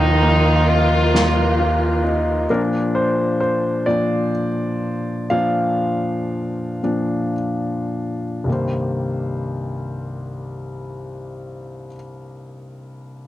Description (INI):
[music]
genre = six-eight pop ballad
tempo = 35-44 BPM (dotted quarters)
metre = 6/8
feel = straight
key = C minor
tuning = A4 = 440 Hz
[part]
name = muted French horn section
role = second line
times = 0.0-2.0 s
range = Eb4 to F4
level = -20 LUFS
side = equal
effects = cassette tape, analog delay
[part]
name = warm concert grand piano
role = accompaniment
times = 0.0-13.3 s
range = C2 to F5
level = -20 LUFS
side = left 1 dB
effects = cassette tape
[part]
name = warm studio string section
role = sustained chords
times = 0.0-2.5 s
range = Eb3 to F4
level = -23 LUFS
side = right 1 dB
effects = cassette tape
[part]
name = fingered electric bass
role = bass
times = 0.0-2.5 s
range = Eb2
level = -19 LUFS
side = equal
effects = none
[part]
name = soft-mallet drum kit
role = drums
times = 0.2-2.3 s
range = ride cymbal, snare drum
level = -27 LUFS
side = right 3 dB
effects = cassette tape
[sound]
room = light reverb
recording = home recording on cassette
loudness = -18 LUFS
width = side -14 dB against mid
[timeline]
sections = 0.0-2.5 A section; 2.5-8.5 B section; 8.5-11.9 C section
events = slowing down 2.5-8.5; grand piano solo 2.5-8.5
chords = 0.0 Ebsus2; 2.5 Bb; 8.5 Cm7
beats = 1.13 | 2.49 3.88 | 5.31 6.83 | 8.48 10.21